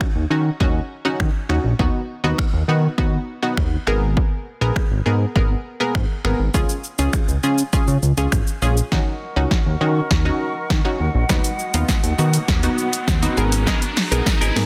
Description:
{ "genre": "dance-pop", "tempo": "101 BPM", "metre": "4/4", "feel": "straight", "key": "Eb minor", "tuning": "A4 = 440 Hz", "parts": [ { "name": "punchy chord stab", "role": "accompaniment", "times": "0.0-14.7 s", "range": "B3 to Bb4", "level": "-26 LUFS", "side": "equal", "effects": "chorus, sidechain pumping" }, { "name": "punchy analog drum machine", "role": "drums", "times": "0.0-14.7 s", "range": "finger snaps, hi-hat, kick drum, shaker, snare drum", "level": "-23 LUFS", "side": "equal", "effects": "overdrive, soft clipping on snare" }, { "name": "chorused synth bass", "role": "bass", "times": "0.2-14.7 s", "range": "Ab1 to Eb3", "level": "-22 LUFS", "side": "equal", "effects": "sidechain pumping" }, { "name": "flute section", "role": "sustained chords", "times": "8.9-14.7 s", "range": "F#4 to Eb6", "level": "-31 LUFS", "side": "equal", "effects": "sidechain pumping" }, { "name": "riser", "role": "sound effects", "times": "10.5-14.7 s", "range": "none", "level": "-33 LUFS", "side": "equal", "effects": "none" }, { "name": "twelve-string electric guitar", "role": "riff", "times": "13.7-14.6 s", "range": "Cb4 to Bb4", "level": "-28 LUFS", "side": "equal", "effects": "lush chorus" }, { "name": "tambourine", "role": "percussion", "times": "14.3-14.4 s", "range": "none", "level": "-39 LUFS", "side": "equal", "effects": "none" } ], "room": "light reverb, digital ambience", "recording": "dense, heavily limited modern master", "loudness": "-20 LUFS", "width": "mono", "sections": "0.0-8.9 A section; 8.9-14.7 B section", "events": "build-up 8.9-14.7; drum fill 8.9-14.7; riser 10.6-14.7", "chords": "0.0 Ebm7; 1.8 B/D#; 3.9 Abmadd9; 6.5 Db; 8.9 Ebm7; 11.3 B/D#; 13.4 Abmadd9" }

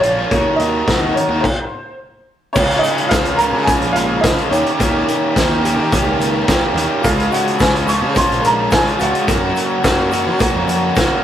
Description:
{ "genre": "indie rock", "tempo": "107 BPM", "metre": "4/4", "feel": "straight", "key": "Db major", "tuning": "A4 = 444 Hz", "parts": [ { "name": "bright upright piano", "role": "melody", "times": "0.0-10.6 s", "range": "C5 to Db6", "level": "-20 LUFS", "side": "right 1 dB", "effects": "none" }, { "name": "bright tonewheel organ", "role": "sustained chords", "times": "0.0-11.2 s", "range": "none", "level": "barely audible", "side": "none", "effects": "none" }, { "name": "biting overdriven guitar", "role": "riff", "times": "0.0-11.2 s", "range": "Gb2 to Bb4", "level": "-21 LUFS", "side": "left 4 dB", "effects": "none" }, { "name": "overdriven electric guitar", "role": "riff", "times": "0.0-11.2 s", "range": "Db3 to C5", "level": "-20 LUFS", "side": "right 4 dB", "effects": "none" }, { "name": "fuzz picked electric bass", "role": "bass", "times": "0.0-10.9 s", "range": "Bb1 to Gb3", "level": "-23 LUFS", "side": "equal", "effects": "overdrive" }, { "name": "loose indie drum kit", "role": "drums", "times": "0.0-11.1 s", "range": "crash cymbal, hi-hat, kick drum, snare drum", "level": "-18 LUFS", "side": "equal", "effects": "none" }, { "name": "bell-like tine electric piano", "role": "second line", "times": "2.5-10.6 s", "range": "Db4 to Db5", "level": "-28 LUFS", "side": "left 2 dB", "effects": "none" }, { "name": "tube shaker", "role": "percussion", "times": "2.6-11.1 s", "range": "none", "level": "-39 LUFS", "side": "right 4 dB", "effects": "none" } ], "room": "moderate stone room reverb, RT60 1.3 s", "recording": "rough rehearsal-room recording", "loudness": "-13 LUFS", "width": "side -10 dB against mid", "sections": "0.0-2.6 A section; 2.6-11.2 B section", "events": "stop 1.4-2.6", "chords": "0.3 Ebm; 1.4 N.C.; 2.6 Db6; 4.5 Eb7; 7.0 Db6; 9.3 Gbmaj7" }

